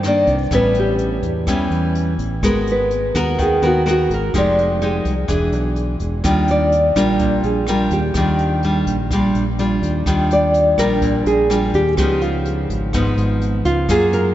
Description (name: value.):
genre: bossa nova.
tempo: 126 BPM.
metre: 4/4.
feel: straight.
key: Eb major.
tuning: A4 = 440 Hz.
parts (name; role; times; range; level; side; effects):
nylon-string guitar; melody; 0.0-14.3 s; F4 to D5; -20 LUFS; equal; none.
nylon-string guitar; accompaniment; 0.0-14.3 s; G2 to Bb4; -19 LUFS; equal; none.
fingered electric bass; bass; 0.0-14.3 s; E1 to G2; -21 LUFS; equal; none.
jazz brush drum kit; drums; 0.0-14.2 s; hi-hat, kick drum, rim click; -27 LUFS; equal; none.
room: wet cathedral reverb, RT60 5.1 s.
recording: in a vast, echoing space, nothing above 7.8 kHz.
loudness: -15 LUFS.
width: side -13 dB against mid.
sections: 0.0-10.1 A section; 10.1-14.3 A section.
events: none.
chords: 0.0 Cm9; 0.5 A9; 2.4 Abm9; 4.3 Fm9; 5.3 E7; 6.2 Ebmaj9; 12.0 Db9.